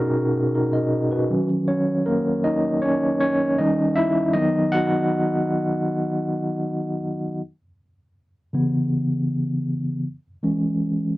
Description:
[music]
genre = soul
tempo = 79 BPM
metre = 4/4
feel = straight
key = unclear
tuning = A4 = 440 Hz
[part]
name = overdriven tine electric piano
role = solo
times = 0.0-11.2 s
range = B2 to F#5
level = -20 LUFS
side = equal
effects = fast tremolo
[sound]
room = light reverb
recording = dry, close 1970s-style studio recording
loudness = -20 LUFS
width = side -18 dB against mid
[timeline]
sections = 0.0-1.3 A section; 1.3-11.2 B section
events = tine electric piano solo 1.3-11.2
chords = 0.0 Bmaj9; 1.3 D#m7; 3.6 D#7; 4.4 D#m; 7.4 C#m7; 10.1 E6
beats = 0.55 | 1.31 2.07 2.83 3.60 | 4.36 5.12 5.88 6.64 | 7.40 8.16 8.92 9.68 | 10.44

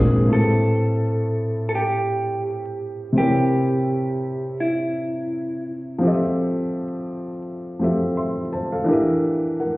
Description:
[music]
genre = hip hop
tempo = 84 BPM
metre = 4/4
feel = swing 56% on 16ths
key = A minor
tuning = A4 = 443 Hz
[part]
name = felt-muted upright piano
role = accompaniment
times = 0.0-9.8 s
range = A2 to C6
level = -21 LUFS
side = equal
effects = cassette tape
[part]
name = electric guitar through a small old amp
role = melody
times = 0.3-5.6 s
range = E4 to A4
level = -24 LUFS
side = right 1 dB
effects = analog delay, plate reverb
[sound]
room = wet studio reverb, RT60 0.6 s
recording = heard muffled through a wall, stone room reverb, vinyl crackle, EQ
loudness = -20 LUFS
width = side -20 dB against mid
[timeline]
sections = 0.3-9.8 A section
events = none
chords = 0.3 Am7; 3.2 C7b9; 6.0 Fmaj9; 8.9 Em7b5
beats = | 0.30 1.02 1.73 2.44 | 3.16 3.87 4.59 5.30 | 6.02 6.73 7.45 8.16 | 8.87 9.59

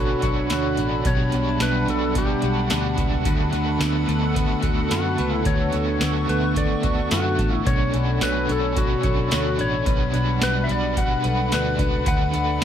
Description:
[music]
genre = dream pop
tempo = 109 BPM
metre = 4/4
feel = straight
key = unclear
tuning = A4 = 442 Hz
[part]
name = clean lap steel guitar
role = melody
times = 0.0-12.6 s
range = F#4 to F#5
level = -27 LUFS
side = left 3 dB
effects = tape echo
[part]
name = crunchy overdriven guitar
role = accompaniment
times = 0.0-12.6 s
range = B2 to B4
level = -29 LUFS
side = right 2 dB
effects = tremolo, analog chorus
[part]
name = hollow soft pad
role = sustained chords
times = 0.0-12.6 s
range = G3 to C#6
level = -27 LUFS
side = right 2 dB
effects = chorus
[part]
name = clean electric guitar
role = arpeggios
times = 0.0-12.6 s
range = B2 to C#5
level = -26 LUFS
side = left 2 dB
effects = wide subtle chorus, tape echo
[part]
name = vintage muted fingered electric bass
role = bass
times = 0.0-12.6 s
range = A1 to F#2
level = -26 LUFS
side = equal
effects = none
[part]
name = vibraphone with hard mallets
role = texture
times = 0.0-6.8, 11.2-12.3 s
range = A4 to A5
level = -39 LUFS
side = equal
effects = none
[part]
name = booming analog drum machine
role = drums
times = 0.2-12.6 s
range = hi-hat, kick drum, snare drum, tambourine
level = -24 LUFS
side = right 1 dB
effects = none
[sound]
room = light reverb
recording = none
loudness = -19 LUFS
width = side -9 dB against mid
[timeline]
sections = 0.0-12.6 A section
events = none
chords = 0.0 Bm9; 1.1 Gmaj7/B; 3.3 Bm9; 9.9 Gmaj7/B; 12.1 Bm7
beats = 0.51 | 1.06 1.61 2.16 2.71 | 3.26 3.81 4.36 4.91 | 5.46 6.01 6.56 7.11 | 7.66 8.21 8.77 9.31 | 9.87 10.42 10.97 11.52 | 12.07 12.62

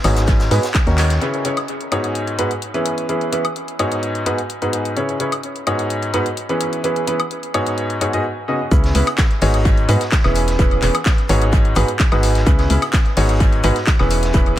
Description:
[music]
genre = piano house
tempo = 128 BPM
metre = 4/4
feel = straight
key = G# minor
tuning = A4 = 440 Hz
[part]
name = clear grand piano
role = riff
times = 0.0-14.5 s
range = G#2 to D#5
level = -19 LUFS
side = equal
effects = sidechain pumping, low-pass filter, dub echo
[part]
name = organ-like FM bass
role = bass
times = 0.0-1.2, 8.7-14.6 s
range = E1 to G#2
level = -17 LUFS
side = equal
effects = sidechain pumping
[part]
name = house drum kit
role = drums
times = 0.0-14.6 s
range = handclaps, hi-hat, woodblock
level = -25 LUFS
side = left 2 dB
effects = dub echo
[part]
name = raw garage drum kit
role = drums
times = 0.0-1.2, 8.7-14.5 s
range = hi-hat, shaker, snare drum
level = -32 LUFS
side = equal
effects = sidechain pumping on hats, high-pass filter on hats, high-pass filter on snare, sidechain pumping on perc, high-pass filter on perc, high-pass filter on room, dub echo
[part]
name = electronic kick drum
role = drums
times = 0.3-0.8, 8.7-14.4 s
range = none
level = -15 LUFS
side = equal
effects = none
[sound]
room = light reverb, studio ambience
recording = echo-heavy mix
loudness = -15 LUFS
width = side -13 dB against mid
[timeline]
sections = 0.0-1.2 A section; 1.2-8.7 B section; 8.7-14.6 C section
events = drum fill 1.0; band accent 1.0; break 8.2-8.7; drop 8.7-14.6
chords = 0.3 G#m7; 0.7 D#m7; 1.2 C#m7; 1.9 G#m7; 5.0 C#m7; 5.7 G#m7; 8.7 C#m7; 9.4 E6; 11.5 G#m7; 12.5 C#m7; 13.2 E6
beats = 0.28 0.75 | 1.22 1.68 2.15 2.62 | 3.09 3.56 4.03 4.50 | 4.96 5.43 5.90 6.37 | 6.84 7.31 7.78 8.25 | 8.71 9.18 9.65 10.12 | 10.59 11.06 11.53 12.00 | 12.46 12.93 13.40 13.87 | 14.34

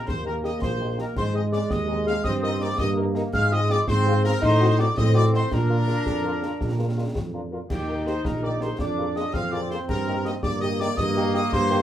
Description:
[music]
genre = military-style march for wind band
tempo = 110 BPM (dotted quarters)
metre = 6/8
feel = straight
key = Eb major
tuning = A4 = 441 Hz
[part]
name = clear trumpet section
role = melody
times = 0.0-11.8 s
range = G4 to F5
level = -31 LUFS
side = left 2 dB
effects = none
[part]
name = piccolo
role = second line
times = 0.0-11.8 s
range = G5 to F6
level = -30 LUFS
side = equal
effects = none
[part]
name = warm trombone section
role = sustained chords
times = 0.0-11.8 s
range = Ab3 to Eb4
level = -28 LUFS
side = right 1 dB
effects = none
[part]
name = dark tuba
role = bass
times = 0.1-11.8 s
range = Bb1 to Bb2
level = -24 LUFS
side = right 1 dB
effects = none
[part]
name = concert snare drum, concert bass drum and clash cymbals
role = drums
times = 0.1-11.7 s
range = none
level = -32 LUFS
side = equal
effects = none
[part]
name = mellow French horn section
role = accompaniment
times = 0.2-11.8 s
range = Bb3 to Bb4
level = -32 LUFS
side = left 3 dB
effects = none
[sound]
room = wet small room reverb, RT60 0.5 s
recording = heard from further back in the room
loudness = -21 LUFS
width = side -11 dB against mid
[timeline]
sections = 0.0-11.8 A section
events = none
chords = 0.0 Eb; 1.2 Ab; 2.2 Eb/G; 3.3 Fm/Ab; 4.4 Adim7; 5.5 Bb; 7.7 Eb; 8.8 Bb7/F; 9.9 Eb/G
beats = | 0.07 0.61 | 1.16 1.70 | 2.25 2.79 | 3.34 3.88 | 4.43 4.97 | 5.52 6.07 | 6.61 7.16 | 7.70 8.25 | 8.79 9.34 | 9.88 10.43 | 10.97 11.52

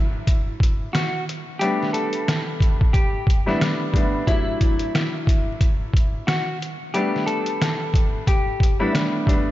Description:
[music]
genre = hip hop, boom-bap hip-hop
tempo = 90 BPM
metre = 4/4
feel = swing 61% on 16ths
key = unclear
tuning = A4 = 440 Hz
[part]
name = clean electric guitar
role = melody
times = 0.0-8.9 s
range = E4 to A4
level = -27 LUFS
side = left 2 dB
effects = lush chorus, high-pass filter, low-pass filter, analog delay
[part]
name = warm upright piano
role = accompaniment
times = 0.0-9.5 s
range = F#3 to E4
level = -26 LUFS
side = left 1 dB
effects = cassette tape, high-pass filter, low-pass filter
[part]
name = trip hop sampler-style drum kit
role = drums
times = 0.3-9.5 s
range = hi-hat, kick drum, rim click, snare drum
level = -20 LUFS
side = equal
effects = vintage 12-bit sampler grit
[sound]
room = moderate church reverb, RT60 3.7 s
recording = dreamy mix soaked in reverb, vinyl crackle, nothing above 7.6 kHz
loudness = -19 LUFS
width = side -15 dB against mid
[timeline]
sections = 0.0-9.5 A section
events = none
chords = 0.0 E9sus4; 1.6 A9sus4; 4.3 E9sus4; 6.9 A9sus4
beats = 0.27 0.94 | 1.61 2.27 2.94 3.61 | 4.27 4.94 5.61 6.27 | 6.94 7.61 8.27 8.94

